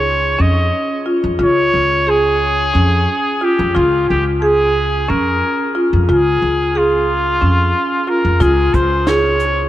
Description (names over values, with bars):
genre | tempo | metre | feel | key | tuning
progressive instrumental, band music in an uneven meter | 180 BPM (eighths) | 7/8 | straight | Db lydian | A4 = 440 Hz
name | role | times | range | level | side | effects
bright trumpet | melody | 0.0-9.7 s | F4 to Eb5 | -17 LUFS | equal | none
marimba with medium mallets | arpeggios | 0.0-9.6 s | Db4 to Ab4 | -16 LUFS | equal | none
upright bass | bass | 0.0-9.7 s | Db2 to F2 | -18 LUFS | equal | none
compact cocktail drum kit | drums | 8.4-9.6 s | hi-hat, kick drum, snare drum | -20 LUFS | equal | none
room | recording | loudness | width
wet cathedral reverb, RT60 6.5 s | in a vast, echoing space | -12 LUFS | side -13 dB against mid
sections
0.0-9.7 A section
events
none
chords
0.0 Db